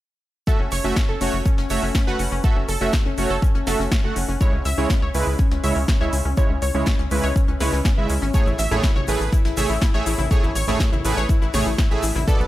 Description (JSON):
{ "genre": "progressive house", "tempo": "122 BPM", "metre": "4/4", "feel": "straight", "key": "F# minor", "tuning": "A4 = 439 Hz", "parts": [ { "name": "analog pluck", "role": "arpeggios", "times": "0.5-12.5 s", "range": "B3 to E5", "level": "-27 LUFS", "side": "left 3 dB", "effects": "chorus, sidechain pumping, digital delay" }, { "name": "soft supersaw", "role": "stabs", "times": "0.5-12.4 s", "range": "A2 to F#5", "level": "-25 LUFS", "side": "right 3 dB", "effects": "sidechain pumping, digital delay" }, { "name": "electronic kick drum", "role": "drums", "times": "0.5-12.4 s", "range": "none", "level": "-19 LUFS", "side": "equal", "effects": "none" }, { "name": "soft brush drum kit", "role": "drums", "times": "0.5-12.4 s", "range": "hi-hat, shaker, snare drum", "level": "-37 LUFS", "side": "equal", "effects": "sidechain pumping on hats, high-pass filter on hats, high-pass filter on snare, sidechain pumping on perc, high-pass filter on perc, high-pass filter on room" }, { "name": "tight sequencer bass", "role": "bass", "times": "0.6-12.5 s", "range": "F#1 to C#2", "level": "-24 LUFS", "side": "equal", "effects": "sidechain pumping" }, { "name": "big-room dance drum kit", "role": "drums", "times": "0.7-12.5 s", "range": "cabasa, hi-hat, snare drum", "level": "-29 LUFS", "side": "equal", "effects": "sidechain pumping on hats, sidechain pumping on perc" }, { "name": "congas", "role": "percussion", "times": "8.5-12.5 s", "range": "none", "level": "-32 LUFS", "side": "right 3 dB", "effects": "sidechain pumping on perc" } ], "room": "small room ambience", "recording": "none", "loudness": "-18 LUFS", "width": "side -15 dB against mid", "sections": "0.5-12.5 A section", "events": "none", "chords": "0.5 F#m7; 4.4 C#m; 8.3 Amaj7", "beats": "| 0.47 0.96 1.46 1.95 | 2.44 2.93 3.42 3.92 | 4.41 4.90 5.39 5.88 | 6.38 6.87 7.36 7.85 | 8.34 8.83 9.33 9.82 | 10.31 10.80 11.29 11.79 | 12.28" }